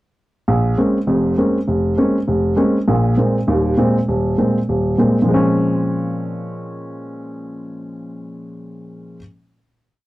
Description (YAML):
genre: jazz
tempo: 200 BPM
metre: 4/4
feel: swing 61% on 8ths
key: Bb minor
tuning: A4 = 439 Hz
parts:
  - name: warm upright piano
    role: solo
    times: 0.5-9.2 s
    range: Eb1 to Db4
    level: -16 LUFS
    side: equal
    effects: none
room: moderate booth ambience, RT60 0.3 s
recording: dry, close 1970s-style studio recording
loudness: -15 LUFS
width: side -17 dB against mid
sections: 0.5-5.3 A section; 5.3-7.7 final chord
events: none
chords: 0.5 Bbm9; 2.9 Abadd9; 5.3 Bbm9